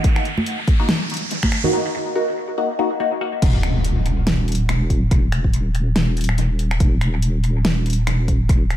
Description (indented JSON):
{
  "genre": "deep dubstep",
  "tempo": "142 BPM",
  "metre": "4/4",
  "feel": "swing 57% on 16ths, half-time",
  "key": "Eb minor",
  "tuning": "A4 = 444 Hz",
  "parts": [
    { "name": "deep house drum kit", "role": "drums", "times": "0.0-8.8 s", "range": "crash cymbal, finger snaps, hi-hat, snare drum", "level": "-24 LUFS", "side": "equal", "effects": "dub echo" },
    { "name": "electronic kick drum", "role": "drums", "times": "0.0-8.6 s", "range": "none", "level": "-17 LUFS", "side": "equal", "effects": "none" },
    { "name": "riser and impact", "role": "sound effects", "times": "0.0-5.1 s", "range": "none", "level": "-27 LUFS", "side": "equal", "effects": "none" },
    { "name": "congas", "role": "percussion", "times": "0.4-1.7 s", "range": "none", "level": "-27 LUFS", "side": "right 2 dB", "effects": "dub echo" },
    { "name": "filtered dub chord stab", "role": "stabs", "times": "0.8-3.3 s", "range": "Bb3 to Gb4", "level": "-22 LUFS", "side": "left 2 dB", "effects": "phaser, dub echo" },
    { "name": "deep soft wobble bass", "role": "bass", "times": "3.4-8.8 s", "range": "Eb1", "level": "-19 LUFS", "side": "equal", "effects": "chorus" }
  ],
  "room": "light reverb",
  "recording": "echo-heavy mix",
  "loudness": "-17 LUFS",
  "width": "side -12 dB against mid",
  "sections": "0.0-3.4 A section; 3.4-8.8 B section",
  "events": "build-up 0.0-3.4; riser 0.0-1.7; break 1.7-3.4; drop 3.4-8.8; impact 3.4-5.1",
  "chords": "0.0 Ebm; 3.4 N.C."
}